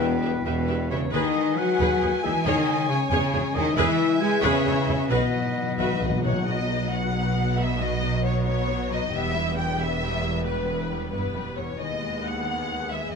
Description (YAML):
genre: cinematic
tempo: 90 BPM (dotted quarters)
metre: 6/8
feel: straight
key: B major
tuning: A4 = 437 Hz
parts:
  - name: warm symphonic violin section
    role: melody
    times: 0.0-13.2 s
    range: B4 to G#5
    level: -30 LUFS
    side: left 3 dB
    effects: none
  - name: clear oboe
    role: second line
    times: 0.0-6.2 s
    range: B4 to G#5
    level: -34 LUFS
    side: right 1 dB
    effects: none
  - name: mellow clarinet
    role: second line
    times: 0.0-6.2 s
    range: B4 to D#5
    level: -36 LUFS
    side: left 2 dB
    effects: none
  - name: mellow hollow silver concert flute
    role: second line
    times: 0.0-6.2 s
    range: F#5 to G#5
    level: -34 LUFS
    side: left 2 dB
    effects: none
  - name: warm symphonic violin section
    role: second line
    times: 0.0-13.2 s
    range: D#4 to G#5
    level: -36 LUFS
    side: left 3 dB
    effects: none
  - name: clear symphonic viola section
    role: accompaniment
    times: 0.0-13.2 s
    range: F#3 to C#5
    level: -31 LUFS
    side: equal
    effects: none
  - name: dark French horn section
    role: sustained chords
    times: 0.0-6.2 s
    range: B3 to G#4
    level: -27 LUFS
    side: left 6 dB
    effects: none
  - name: concert harp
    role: arpeggios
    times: 0.0-13.2 s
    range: B2 to C#6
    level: -33 LUFS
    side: left 13 dB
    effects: none
  - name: clear symphonic double bass section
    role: bass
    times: 0.0-13.2 s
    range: E1 to E2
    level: -30 LUFS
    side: right 4 dB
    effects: none
  - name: mellow tuba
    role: bass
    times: 0.0-6.3 s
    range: E1 to D#2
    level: -34 LUFS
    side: right 6 dB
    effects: none
  - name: rich symphonic cello section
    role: bass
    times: 0.0-13.2 s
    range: D#2 to G#3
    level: -30 LUFS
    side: right 3 dB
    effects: none
  - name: timpani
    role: percussion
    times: 5.1-6.4 s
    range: B2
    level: -30 LUFS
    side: equal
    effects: none
room: light reverb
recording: close, detailed microphones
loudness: -22 LUFS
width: side -5 dB against mid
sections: 0.0-6.5 A section; 6.5-13.2 B section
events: timpani fill 5.1-6.5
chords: 0.0 Em; 1.1 G#m/D#; 2.5 C#m/E; 3.8 E; 5.1 B; 9.1 Em; 11.8 G#m/D#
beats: 0.45 | 1.13 1.80 | 2.45 3.11 | 3.77 4.43 | 5.10 5.78 | 6.46 7.13 | 7.79 8.46 | 9.11 9.78 | 10.45 11.12 | 11.80 12.46 | 13.13